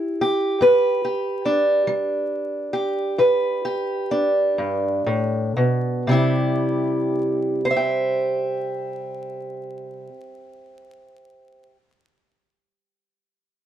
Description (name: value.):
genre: blues.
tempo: 38-49 BPM (dotted quarters).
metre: 12/8.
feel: straight.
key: C major.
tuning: A4 = 440 Hz.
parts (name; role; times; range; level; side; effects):
fingerpicked steel-string acoustic guitar; solo; 0.0-11.8 s; G2 to G5; -19 LUFS; equal; none.
room: light reverb.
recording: close, detailed microphones, vinyl crackle.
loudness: -19 LUFS.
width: side -10 dB against mid.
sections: 0.0-6.1 A section; 6.1-12.3 B section.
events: slowing down 0.0-6.1.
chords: 0.0 C (rootless); 0.6 G; 6.1 C.